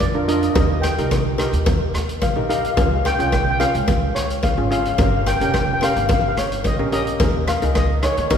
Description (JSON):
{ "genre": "calypso", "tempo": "108 BPM", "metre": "4/4", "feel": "straight", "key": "unclear", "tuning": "A4 = 440 Hz", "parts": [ { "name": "steel pan", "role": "melody", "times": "0.0-8.4 s", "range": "Db5 to G5", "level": "-23 LUFS", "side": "left 2 dB", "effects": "none" }, { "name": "upright bass", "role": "bass", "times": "0.0-8.4 s", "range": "F1 to F2", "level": "-23 LUFS", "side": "right 1 dB", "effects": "none" }, { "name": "street-band drum kit", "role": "drums", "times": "0.0-8.4 s", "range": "hi-hat, kick drum, rim click", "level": "-22 LUFS", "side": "equal", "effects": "none" }, { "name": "cowbell", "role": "percussion", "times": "0.0-8.4 s", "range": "none", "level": "-27 LUFS", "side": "left 5 dB", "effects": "none" }, { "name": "steel pan", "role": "accompaniment", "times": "0.1-8.4 s", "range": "Db4 to Db5", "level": "-24 LUFS", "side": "right 1 dB", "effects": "none" } ], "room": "wet church reverb, RT60 3.3 s", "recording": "recorded in a church or concert hall", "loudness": "-17 LUFS", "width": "side -8 dB against mid", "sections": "0.0-8.4 A section", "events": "none", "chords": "0.0 Bb/F; 0.6 Eb; 2.8 Db; 5.0 Gm7b5; 7.2 Eb7sus4" }